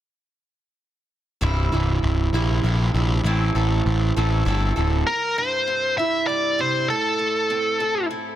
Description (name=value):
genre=rock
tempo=66 BPM (dotted quarters)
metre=6/8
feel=straight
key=C mixolydian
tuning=A4 = 439 Hz
part: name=picked acoustic archtop guitar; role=arpeggios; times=1.4-8.4 s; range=C2 to A4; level=-26 LUFS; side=right 3 dB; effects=none
part: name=fuzz picked electric bass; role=bass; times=1.4-5.0 s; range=C1 to Bb1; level=-20 LUFS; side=equal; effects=overdrive
part: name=nasal lead guitar with a parked wah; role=melody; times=5.1-8.1 s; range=A4 to E5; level=-20 LUFS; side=left 1 dB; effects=overdrive, slapback echo
room=small room ambience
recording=dense, heavily limited modern master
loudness=-19 LUFS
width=side -12 dB against mid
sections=1.4-5.1 A section; 5.1-8.4 B section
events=none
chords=1.4 C; 3.2 Am; 5.1 C; 6.9 Am